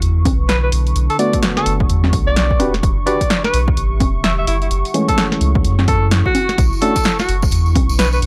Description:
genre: UK garage, two-step garage.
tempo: 128 BPM.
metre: 4/4.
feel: swing 61% on 16ths.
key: B minor.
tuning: A4 = 439 Hz.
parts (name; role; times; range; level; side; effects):
warm analog pad; sustained chords; 0.0-8.3 s; C#6; -31 LUFS; equal; chorus, sidechain pumping.
soft dub sub bass; bass; 0.0-8.3 s; E1 to F#2; -19 LUFS; equal; sidechain pumping.
punchy analog drum machine; drums; 0.0-8.3 s; congas, hi-hat, snare drum; -22 LUFS; equal; none.
deep dark ambient pad; texture; 0.0-8.3 s; D3 to C#6; -32 LUFS; equal; chorus, built-in reverb, sidechain pumping.
electronic kick drum; drums; 0.3-7.9 s; none; -21 LUFS; equal; none.
clear alto saxophone; melody; 0.5-8.2 s; E4 to E5; -23 LUFS; equal; analog delay.
percussive organ stab; stabs; 1.2-7.0 s; E3 to B4; -23 LUFS; equal; chorus.
tambourine; percussion; 6.6-8.2 s; none; -32 LUFS; equal; none.
room: little or no reverb.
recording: dry, gritty hardware recording.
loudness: -16 LUFS.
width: mono.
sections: 0.0-8.3 A section.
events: none.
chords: 0.0 Bm9; 2.6 Em9; 4.5 F#m9; 6.6 Bm9.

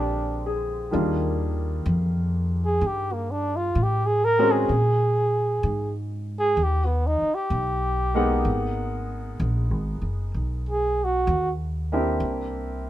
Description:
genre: jazz ballad.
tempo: 64 BPM.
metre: 4/4.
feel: swing 68% on 8ths.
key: Eb major.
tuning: A4 = 439 Hz.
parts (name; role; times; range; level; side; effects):
mellow flugelhorn; melody; 0.0-11.5 s; Bb3 to Bb4; -23 LUFS; right 1 dB; none.
bright upright piano; accompaniment; 0.0-12.9 s; D3 to Gb5; -27 LUFS; left 1 dB; none.
upright bass; bass; 0.0-12.9 s; Gb1 to Bb2; -25 LUFS; equal; none.
room: little or no reverb.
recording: minimal, uncompressed stereo recording.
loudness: -22 LUFS.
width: side -13 dB against mid.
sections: 0.9-12.9 A section.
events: flugelhorn solo 0.9-12.9.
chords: 0.0 Bb9; 0.9 Ebmaj9; 4.7 Absus2; 6.6 Eb; 8.5 Abm7; 12.2 C7.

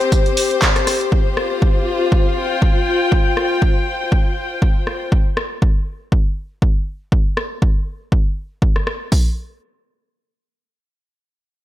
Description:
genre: acid house.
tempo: 120 BPM.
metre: 4/4.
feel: swing 56% on 16ths.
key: unclear.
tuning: A4 = 440 Hz.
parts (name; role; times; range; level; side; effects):
punchy analog drum machine; drums; 0.0-9.0 s; handclaps, hi-hat, rim click; -22 LUFS; equal; none.
warm studio string section; texture; 0.0-5.1 s; C4 to G5; -19 LUFS; left 3 dB; sidechain pumping.
dusty soul sampler-style drum kit; drums; 0.1-1.0 s; hi-hat, snare drum, tambourine; -30 LUFS; equal; none.
punchy analog drum machine; drums; 0.1-9.2 s; hi-hat, kick drum; -16 LUFS; equal; none.
room: light reverb.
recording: none.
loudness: -15 LUFS.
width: side -14 dB against mid.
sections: 0.0-9.1 A section; 9.1-11.6 B section.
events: none.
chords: 0.0 C5; 1.1 F5; 9.1 N.C..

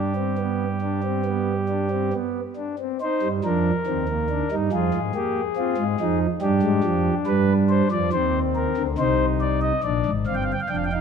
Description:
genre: classical, baroque-style 3-part fugue for pipe organ.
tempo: 70 BPM.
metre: 4/4.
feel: straight.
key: C minor.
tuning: A4 = 438 Hz.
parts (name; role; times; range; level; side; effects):
pipe organ, principal; solo; 0.0-11.0 s; F1 to G5; -20 LUFS; equal; none.
room: wet concert hall reverb, RT60 2.3 s.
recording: none.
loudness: -20 LUFS.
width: side -6 dB against mid.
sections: 0.0-3.0 A section; 3.0-9.8 B section; 9.8-11.0 A section.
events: none.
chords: 0.0 G; 3.0 Cm; 4.7 Fm; 6.4 G7; 8.1 Cm; 9.8 Bb7.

